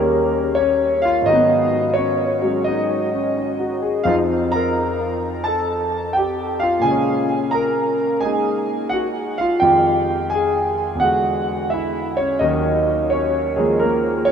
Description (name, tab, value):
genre	solo jazz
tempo	86 BPM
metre	4/4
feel	swing 68% on 8ths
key	Eb minor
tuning	A4 = 439 Hz
part	clear concert grand piano	solo	0.0-14.3 s	Eb2 to Bb5	-17 LUFS	equal	lush chorus, tape echo
room	wet huge ambient reverb, RT60 4.5 s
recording	dreamy mix soaked in reverb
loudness	-17 LUFS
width	side -7 dB against mid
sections	0.0-14.3 A section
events	none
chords	0.0 Eb7; 1.3 Abm7; 4.0 F7; 6.8 Bbm7; 9.6 Fm7; 11.0 E9; 12.4 Ebm7